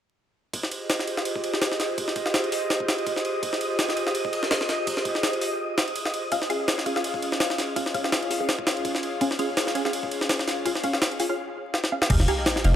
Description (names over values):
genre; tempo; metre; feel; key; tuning
drum and bass, jungle; 166 BPM; 4/4; swing 55% on 16ths; F minor; A4 = 440 Hz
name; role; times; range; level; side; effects
airy breathy pad; sustained chords; 0.7-12.8 s; Ab3 to G5; -29 LUFS; equal; chorus, vintage 12-bit sampler grit
jungle sampler-style drum kit; drums; 0.5-12.7 s; crash cymbal, hi-hat, kick drum, ride cymbal, snare drum; -26 LUFS; equal; high-pass filter on kick, studio ambience, high-pass filter on cymbals, high-pass filter on snare, high-pass filter on hats
wind-like tuned noise texture; texture; 1.1-11.4 s; Eb5 to Eb6; -35 LUFS; equal; built-in reverb
filtered dub chord stab; stabs; 6.3-12.7 s; Db4 to F5; -29 LUFS; equal; phaser, analog chorus, dub echo
saturated sub bass; bass; 12.1-12.8 s; F1; -20 LUFS; equal; none
sub drop; sound effects; 12.2-12.8 s; none; -30 LUFS; equal; none
room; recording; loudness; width
moderate lush hall reverb, RT60 1.9 s, digital ambience; vinyl crackle; -23 LUFS; side -10 dB against mid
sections
0.5-12.1 A section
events
drum fill 11.7-12.1; impact 12.1-12.8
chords
0.5 Fm9; 6.3 Db; 12.1 Fm9